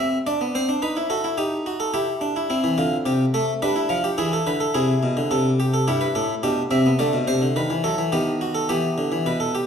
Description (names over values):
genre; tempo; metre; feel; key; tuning
classical, baroque-style 3-part fugue for harpsichord; 107 BPM; 3/4; straight; unclear; A4 = 440 Hz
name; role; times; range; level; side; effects
harpsichord; solo; 0.0-9.7 s; G2 to E5; -20 LUFS; equal; none
room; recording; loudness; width
wet recital hall reverb, RT60 1.5 s; minimal, uncompressed stereo recording; -20 LUFS; side -7 dB against mid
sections
0.0-9.3 A section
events
none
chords
0.3 Bm; 0.8 B7/D#; 1.9 Em; 2.5 Am; 3.6 G; 4.2 E7; 5.3 Am/C; 5.9 Em/G; 7.0 D5; 7.6 B7/D#; 8.7 Em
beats
0.27 | 0.83 1.38 1.94 | 2.50 3.06 3.63 | 4.19 4.75 5.31 | 5.88 6.44 7.00 | 7.57 8.13 8.70 | 9.27